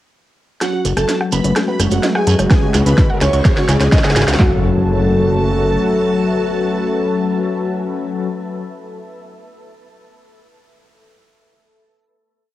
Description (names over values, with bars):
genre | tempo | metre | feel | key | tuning
melodic techno | 127 BPM | 4/4 | straight | F# minor | A4 = 440 Hz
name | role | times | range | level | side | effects
fat analog lead | melody | 0.6-8.3 s | F#4 to C#5 | -22 LUFS | equal | lush chorus, sidechain pumping, cassette tape, analog delay
big bright polysynth | second line | 0.6-8.3 s | F#5 to C#6 | -30 LUFS | right 3 dB | lush chorus, sidechain pumping, cassette tape, tape echo
sweeping resonant pad | sustained chords | 0.6-8.3 s | C#3 to F#4 | -22 LUFS | equal | chorus, sidechain pumping, cassette tape
analog pluck | arpeggios | 0.6-4.6 s | C#4 to A5 | -25 LUFS | equal | chorus, sidechain pumping, cassette tape, tape echo
analog synth brass | stabs | 0.6-8.3 s | C#3 to F#4 | -22 LUFS | left 6 dB | chorus, cassette tape, sidechain pumping, tape echo
techno drum kit | drums | 0.6-4.4 s | hi-hat, rim click, snare drum, toms | -21 LUFS | right 1 dB | high-pass filter on snare, small room ambience, cassette tape, high-pass filter on hats, high-pass filter on toms
shekere | percussion | 0.6-4.4 s | none | -28 LUFS | right 10 dB | none
riser and impact | sound effects | 2.3-8.3 s | none | -27 LUFS | equal | none
granular cloud pad | texture | 1.6-8.4 s | B4 to A5 | -32 LUFS | right 1 dB | built-in reverb, sidechain pumping, cassette tape
fat analog bass | bass | 0.9-5.8 s | F#1 to F#2 | -16 LUFS | equal | sidechain pumping
deep house drum kit | drums | 2.5-4.5 s | handclaps, kick drum, snare drum | -13 LUFS | equal | overdrive, small room ambience, cassette tape
room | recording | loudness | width
moderate spring reverb, RT60 1.3 s, digital ambience | home recording on cassette | -13 LUFS | side -14 dB against mid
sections
0.6-4.4 build; 4.4-8.2 final chord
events
build-up 0.6-4.4; drum fill 0.6-4.4; filter sweep on synth arpeggio sound 0.6-4.4; filter sweep on analog synth lead 0.6-4.4; filter sweep on analog polysynth 0.6-4.4; filter sweep on analog synth pad 0.6-4.4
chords
0.6 F#madd9; 2.5 C#sus4; 4.4 F#m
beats
| 0.62 1.09 1.56 2.03 | 2.51 2.98 3.45 3.92 | 4.39 4.87 5.34 5.81 | 6.29 6.76 7.23 7.70